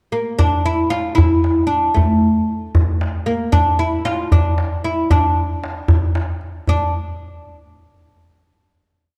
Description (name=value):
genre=Arabic maqam ensemble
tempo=76 BPM (dotted quarters)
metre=6/8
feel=straight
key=D minor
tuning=A4 = 439 Hz
part: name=oud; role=melody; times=0.1-6.9 s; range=A3 to F4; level=-21 LUFS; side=equal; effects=none
part: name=darbuka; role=percussion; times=0.4-6.9 s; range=none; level=-19 LUFS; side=equal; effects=none
room=moderate concert hall reverb, RT60 2.1 s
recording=dark, warm production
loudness=-17 LUFS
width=mono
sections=0.0-0.4 pickup bar; 0.4-6.7 A section; 6.7-8.2 final note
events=none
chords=none